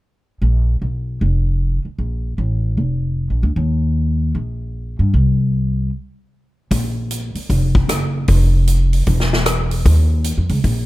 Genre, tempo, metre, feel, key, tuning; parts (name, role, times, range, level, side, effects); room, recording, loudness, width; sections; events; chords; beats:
jazz, big band swing; 153 BPM; 4/4; swing 64% on 8ths; A4 = 440 Hz
upright bass; bass; 0.4-10.9 s; E1 to G2; -16 LUFS; equal
swinging big-band drum kit; drums; 6.7-10.8 s; hi-hat, kick drum, rim click, snare drum; -20 LUFS; left 1 dB
little or no reverb; -15 LUFS; side -17 dB against mid
0.4-6.7 A section; 6.7-10.9 B section
break 5.9-6.7
| 0.42 0.82 1.21 1.60 | 2.00 2.39 2.78 3.18 | 3.57 3.96 4.36 4.75 | 5.14 5.53 5.93 6.32 | 6.71 7.10 7.50 7.89 | 8.28 8.67 9.06 9.46 | 9.85 10.24 10.63